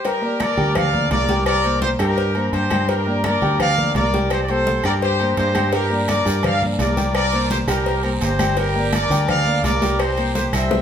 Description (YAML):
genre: latin, salsa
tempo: 169 BPM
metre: 4/4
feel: straight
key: unclear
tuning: A4 = 440 Hz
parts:
  - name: clear trumpet section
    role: melody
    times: 0.0-10.8 s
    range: G4 to F5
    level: -21 LUFS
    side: left 1 dB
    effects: none
  - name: warm baby grand piano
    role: accompaniment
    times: 0.0-10.8 s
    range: G3 to G5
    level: -24 LUFS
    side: equal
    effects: none
  - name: agogo bells and timbales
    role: percussion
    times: 0.0-10.7 s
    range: none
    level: -29 LUFS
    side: right 2 dB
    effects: none
  - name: congas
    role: percussion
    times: 0.1-10.8 s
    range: none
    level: -28 LUFS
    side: left 1 dB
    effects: none
  - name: cowbell and bongos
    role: percussion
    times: 0.1-10.8 s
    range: none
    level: -28 LUFS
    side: left 4 dB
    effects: none
  - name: claves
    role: percussion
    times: 0.4-10.7 s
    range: none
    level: -36 LUFS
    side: left 3 dB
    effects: none
  - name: fingered electric bass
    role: bass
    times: 0.6-10.8 s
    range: G1 to G2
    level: -22 LUFS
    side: equal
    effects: none
  - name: guiro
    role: percussion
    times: 5.7-10.8 s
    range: none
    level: -33 LUFS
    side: right 4 dB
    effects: none
room: wet large studio reverb, RT60 1.1 s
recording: band playing live in one room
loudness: -16 LUFS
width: side -8 dB against mid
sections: 0.0-10.8 A section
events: none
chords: 0.0 Gm7; 1.5 C5; 2.9 Gm7; 4.3 C5; 5.7 Gm; 7.2 C5; 8.6 Gm7; 10.0 C7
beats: | 0.04 0.40 0.76 1.11 | 1.47 1.82 2.18 2.53 | 2.89 3.24 3.60 3.95 | 4.31 4.66 5.02 5.37 | 5.73 6.08 6.44 6.79 | 7.15 7.51 7.86 8.22 | 8.57 8.93 9.28 9.64 | 9.99 10.35 10.71